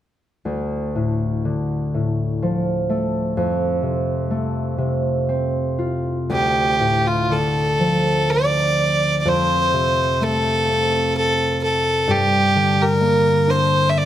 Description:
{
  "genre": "celtic folk, Celtic slow air",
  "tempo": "62 BPM",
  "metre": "3/4",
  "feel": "uneven beats, rubato",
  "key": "D minor",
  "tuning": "A4 = 440 Hz",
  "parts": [
    { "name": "concert harp", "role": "accompaniment", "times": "0.5-14.1 s", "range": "D2 to F4", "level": "-20 LUFS", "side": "left 1 dB", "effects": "none" },
    { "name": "clear fiddle", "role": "melody", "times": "6.3-14.1 s", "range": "F4 to E5", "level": "-18 LUFS", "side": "right 1 dB", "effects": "none" }
  ],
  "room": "light reverb",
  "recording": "close, detailed microphones",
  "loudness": "-17 LUFS",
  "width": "side -11 dB against mid",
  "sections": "0.4-6.3 A section; 6.3-14.1 B section",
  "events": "none",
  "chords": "0.4 Dm; 3.4 F; 6.3 Dm; 9.3 F; 12.1 Gm"
}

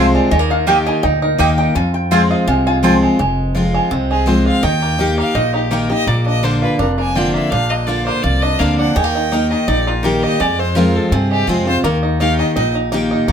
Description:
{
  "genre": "bluegrass",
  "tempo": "167 BPM",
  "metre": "4/4",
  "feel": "straight",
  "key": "F dorian",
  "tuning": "A4 = 443 Hz",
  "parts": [
    { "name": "bluegrass banjo", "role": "melody", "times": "0.0-13.3 s", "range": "Eb3 to F4", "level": "-20 LUFS", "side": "right 3 dB", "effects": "none" },
    { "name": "lap resonator guitar", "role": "second line", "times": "0.0-2.8 s", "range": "Bb4 to Ab5", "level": "-21 LUFS", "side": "left 4 dB", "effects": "none" },
    { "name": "picked steel-string acoustic guitar", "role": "accompaniment", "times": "0.0-13.3 s", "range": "F2 to G4", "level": "-17 LUFS", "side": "left 1 dB", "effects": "none" },
    { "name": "mandolin", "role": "stabs", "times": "0.0-2.9 s", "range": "Bb3 to Ab5", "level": "-17 LUFS", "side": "right 4 dB", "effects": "none" },
    { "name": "upright bass", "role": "bass", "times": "0.0-13.3 s", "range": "F1 to G2", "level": "-20 LUFS", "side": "equal", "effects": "none" },
    { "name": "clear fiddle", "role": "melody", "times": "4.1-12.7 s", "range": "F4 to Ab5", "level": "-21 LUFS", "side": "left 1 dB", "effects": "none" }
  ],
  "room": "light reverb",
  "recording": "close, detailed microphones",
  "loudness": "-13 LUFS",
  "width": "side -8 dB against mid",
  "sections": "0.0-3.2 A section; 3.2-13.3 B section",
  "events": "resonator guitar played with a steel bar solo 0.0-3.2",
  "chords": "0.3 Eb; 1.8 Fm; 4.6 Eb; 6.1 Bb; 9.0 Eb; 10.4 Fm; 11.8 Eb"
}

